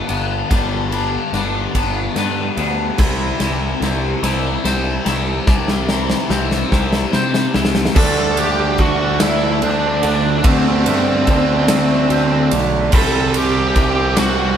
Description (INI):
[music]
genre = post-rock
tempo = 48 BPM (dotted quarters)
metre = 6/8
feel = straight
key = unclear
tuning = A4 = 440 Hz
[part]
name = pedal steel guitar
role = sustained chords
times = 0.0-14.6 s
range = G3 to B5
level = -33 LUFS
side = right 3 dB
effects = none
[part]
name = twangy electric guitar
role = arpeggios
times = 0.0-14.6 s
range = C3 to C5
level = -28 LUFS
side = left 2 dB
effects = none
[part]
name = overdriven semi-hollow guitar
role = riff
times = 0.0-7.9 s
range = G2 to E4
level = -21 LUFS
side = left 4 dB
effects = phaser
[part]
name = fuzz picked electric bass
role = bass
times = 0.1-14.6 s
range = G1 to C3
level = -21 LUFS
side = equal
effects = overdrive
[part]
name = huge arena drum kit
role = drums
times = 0.1-14.4 s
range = crash cymbal, kick drum, ride cymbal, snare drum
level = -20 LUFS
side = equal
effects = none
[part]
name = smooth overdriven lead guitar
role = melody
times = 8.0-14.6 s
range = C4 to A4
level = -18 LUFS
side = left 1 dB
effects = none
[part]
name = sludgy distorted guitar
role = riff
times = 8.0-14.6 s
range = C3 to D4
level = -19 LUFS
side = right 5 dB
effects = overdrive
[sound]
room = moderate stone room reverb, RT60 1.1 s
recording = band playing live in one room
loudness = -14 LUFS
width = side -9 dB against mid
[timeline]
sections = 0.0-8.0 A section; 8.0-14.6 B section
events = build-up 0.0-8.0; drum fill 0.0-8.0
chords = 0.0 G; 3.0 C; 8.0 D7sus4; 12.9 Cmaj7